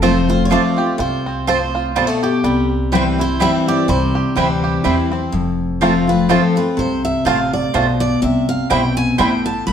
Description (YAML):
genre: bluegrass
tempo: 124 BPM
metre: 3/4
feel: swing 56% on 8ths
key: unclear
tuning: A4 = 440 Hz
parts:
  - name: picked steel-string acoustic guitar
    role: melody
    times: 0.0-9.7 s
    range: G4 to B5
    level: -22 LUFS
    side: equal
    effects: none
  - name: picked steel-string acoustic guitar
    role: accompaniment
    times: 0.0-9.7 s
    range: F2 to F4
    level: -17 LUFS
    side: left 2 dB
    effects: none
  - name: bluegrass banjo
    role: arpeggios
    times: 0.0-9.3 s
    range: E3 to G4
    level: -22 LUFS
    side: right 2 dB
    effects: none
  - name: mandolin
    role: stabs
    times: 0.0-9.3 s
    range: C4 to A5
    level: -21 LUFS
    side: right 6 dB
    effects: none
  - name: upright bass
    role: bass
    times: 0.0-9.7 s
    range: F1 to E2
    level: -23 LUFS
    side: equal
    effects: none
room: wet stone room reverb, RT60 1.1 s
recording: band playing live in one room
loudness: -14 LUFS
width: side -8 dB against mid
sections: 0.0-5.3 A section; 5.3-9.7 B section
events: steel-string acoustic guitar solo 5.3-9.7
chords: 0.0 F; 2.4 C; 5.3 F; 8.2 C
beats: 0.03 0.51 | 0.99 1.48 1.96 | 2.44 2.92 3.40 | 3.88 4.37 4.85 | 5.33 5.82 6.30 | 6.78 7.26 7.75 | 8.23 8.71 9.20 | 9.68